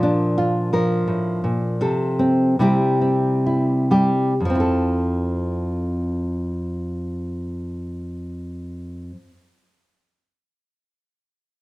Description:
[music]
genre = folk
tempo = 60-88 BPM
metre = 3/4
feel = straight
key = F major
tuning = A4 = 440 Hz
[part]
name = nylon-string guitar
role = accompaniment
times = 0.0-9.3 s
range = F2 to Bb4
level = -19 LUFS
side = equal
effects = none
[sound]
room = moderate large studio reverb, RT60 1.2 s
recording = none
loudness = -19 LUFS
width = side -19 dB against mid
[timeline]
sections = 0.0-4.4 A section; 4.4-10.3 B section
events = slowing down 0.0-4.4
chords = 0.0 Bb; 1.8 F/C; 2.6 C; 4.4 Fmaj7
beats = 0.36 1.06 | 1.80 2.58 3.44 | 4.38 5.38 6.37 | 7.36 8.35

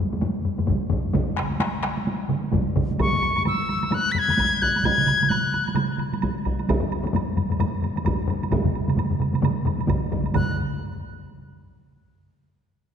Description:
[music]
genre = japanese traditional, taiko drum ensemble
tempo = 130 BPM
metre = 4/4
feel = swing 60% on 16ths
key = F# suspended pentatonic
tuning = A4 = 441 Hz
[part]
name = solo taiko drums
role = percussion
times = 0.1-10.6 s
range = none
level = -27 LUFS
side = right 2 dB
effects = none
[part]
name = taiko ensemble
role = percussion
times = 0.1-10.8 s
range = none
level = -27 LUFS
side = left 4 dB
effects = none
[part]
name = taiko ensemble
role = percussion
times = 0.7-10.6 s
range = none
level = -29 LUFS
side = equal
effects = none
[part]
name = taiko ensemble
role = percussion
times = 1.1-10.8 s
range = none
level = -27 LUFS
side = right 4 dB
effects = none
[part]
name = bright wooden piccolo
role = melody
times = 3.0-5.8, 10.4-10.6 s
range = C#6 to B6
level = -22 LUFS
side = left 3 dB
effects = none
[part]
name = woodblock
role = percussion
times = 3.0-10.6 s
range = none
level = -35 LUFS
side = right 7 dB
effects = none
[sound]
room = wet concert hall reverb, RT60 2.2 s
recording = nothing above 11.0 kHz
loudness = -21 LUFS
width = side -8 dB against mid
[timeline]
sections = 0.0-10.4 A section; 10.4-12.2 B section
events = none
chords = none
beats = 0.23 0.69 | 1.15 1.62 2.08 2.54 | 3.00 3.46 3.92 4.38 | 4.84 5.30 5.76 6.22 | 6.68 7.14 7.60 8.06 | 8.52 8.98 9.44 9.90 | 10.36

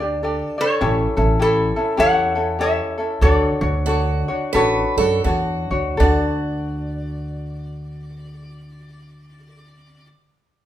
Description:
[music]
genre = Hawaiian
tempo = 77-103 BPM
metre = 4/4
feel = swing 62% on 8ths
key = D major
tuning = A4 = 443 Hz
[part]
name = lap resonator guitar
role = melody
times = 0.0-10.1 s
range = E4 to A5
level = -22 LUFS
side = left 2 dB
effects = none
[part]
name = ukulele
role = accompaniment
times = 0.0-10.1 s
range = C#4 to D5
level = -21 LUFS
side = left 1 dB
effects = none
[part]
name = upright bass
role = bass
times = 0.0-10.1 s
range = A1 to F#2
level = -22 LUFS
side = equal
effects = none
[part]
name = picked old ladder-braced acoustic guitar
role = second line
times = 3.9-10.1 s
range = F#4 to B4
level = -24 LUFS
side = right 4 dB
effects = none
[sound]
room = moderate large studio reverb, RT60 0.9 s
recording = band playing live in one room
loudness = -17 LUFS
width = side -12 dB against mid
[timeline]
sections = 0.0-6.0 A section; 6.0-9.1 B section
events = slowing down 0.8-6.0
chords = 0.0 Gsus2; 0.8 A7; 3.2 Dmaj7; 6.0 D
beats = 0.23 | 0.81 1.40 1.99 2.60 | 3.22 3.87 4.54 5.25 | 6.00 6.78 7.55 8.33

